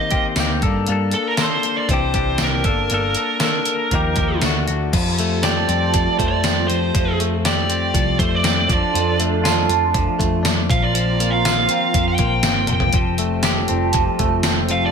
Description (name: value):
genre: indie rock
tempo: 120 BPM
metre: 4/4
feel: straight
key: unclear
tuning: A4 = 440 Hz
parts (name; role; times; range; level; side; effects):
- fuzz lead guitar; melody; 0.0-14.9 s; A4 to G5; -22 LUFS; right 2 dB; distortion, slapback echo, analog delay
- clean electric guitar; riff; 0.0-14.9 s; Eb3 to A4; -23 LUFS; left 7 dB; slapback echo
- electric guitar through a small old amp; riff; 0.0-14.9 s; G2 to Bb4; -24 LUFS; right 10 dB; ensemble chorus, slapback echo, analog delay
- detuned 8-bit digital drum machine; drums; 0.1-14.8 s; crash cymbal, hi-hat, kick drum, snare drum, tambourine, toms; -21 LUFS; equal; none
- hollow-body short-scale picked electric bass; bass; 0.4-14.9 s; F1 to G2; -23 LUFS; right 1 dB; none
room: moderate lush hall reverb, RT60 1.6 s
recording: big arena sound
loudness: -16 LUFS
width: side -6 dB against mid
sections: 0.0-4.9 A section; 4.9-14.9 B section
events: lead electric guitar solo 4.9-14.9; drum fill 12.7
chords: 0.0 Cm7/Eb; 0.6 Gmadd9; 1.9 Cadd9; 2.7 Gmadd9; 3.9 Ebadd9; 4.4 D; 4.9 Fadd9; 8.7 Dm/F; 10.7 Bbsus2; 13.0 Fadd9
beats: 0.38 | 0.89 1.39 1.90 2.40 | 2.91 3.41 3.92 4.42 | 4.93 5.43 5.94 6.44 | 6.94 7.44 7.95 8.45 | 8.95 9.45 9.95 10.45 | 10.95 11.45 11.95 12.45 | 12.95 13.45 13.95 14.45